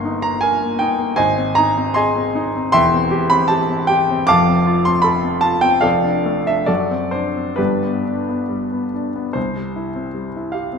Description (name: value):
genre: classical, romantic character piece for solo piano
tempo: 64-81 BPM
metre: 2/4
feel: rubato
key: C major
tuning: A4 = 440 Hz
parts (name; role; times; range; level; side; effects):
- warm grand piano; solo; 0.0-10.8 s; E1 to D6; -15 LUFS; equal; none
room: wet scoring stage reverb, RT60 1.7 s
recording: minimal, uncompressed stereo recording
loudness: -15 LUFS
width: side -6 dB against mid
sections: 0.0-9.4 A section; 9.4-10.8 B section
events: none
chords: 0.0 Eb/G; 1.2 Ab; 2.7 C/E; 4.3 F; 5.8 Dm/F; 6.7 D7/F#; 7.6 G; 9.4 C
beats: 0.42 | 1.18 1.95 | 2.73 3.49 | 4.28 5.05 | 5.85 6.69 | 7.58 8.49 | 9.36 10.16